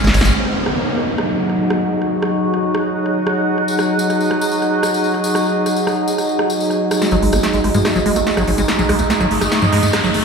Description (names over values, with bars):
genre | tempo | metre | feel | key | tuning
psychedelic trance | 144 BPM | 4/4 | straight | unclear | A4 = 437 Hz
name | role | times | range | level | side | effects
overtone-sweeping drone | sustained chords | 0.0-10.2 s | F#3 to F#4 | -20 LUFS | left 1 dB | chorus, built-in reverb
liquid acid bass | riff | 0.0-0.3, 7.0-10.2 s | F#3 to B3 | -19 LUFS | equal | chorus, auto-pan, dub echo
tight sequencer bass | bass | 0.0-0.3, 7.1-10.2 s | F#1 to G#2 | -18 LUFS | equal | none
big-room dance drum kit | drums | 0.0-10.2 s | hi-hat, ride cymbal, rim click, snare drum | -22 LUFS | right 1 dB | high-pass filter on hats, high-pass filter on cymbals, high-pass filter on snare, high-pass filter on room
tambourine | percussion | 0.0-0.3, 3.7-10.1 s | none | -28 LUFS | left 4 dB | none
downlifter and riser | sound effects | 0.3-3.7, 7.8-10.2 s | none | -23 LUFS | equal | none
airy breathy pad | texture | 0.8-10.2 s | D#4 to D#5 | -20 LUFS | right 3 dB | chorus
room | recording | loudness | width
wet digital room reverb, RT60 0.9 s | played on a big sound system in a bare room, large studio reverb | -14 LUFS | side -5 dB against mid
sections
0.3-7.0 A section; 7.0-10.2 B section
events
drum fill 0.0-0.3, 7.0-10.2; band accent 0.2; build-up 7.0-10.2; filter sweep on acid bass 7.0-10.2; filter sweep 7.0-10.2; riser 7.8-10.2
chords
0.3 G#5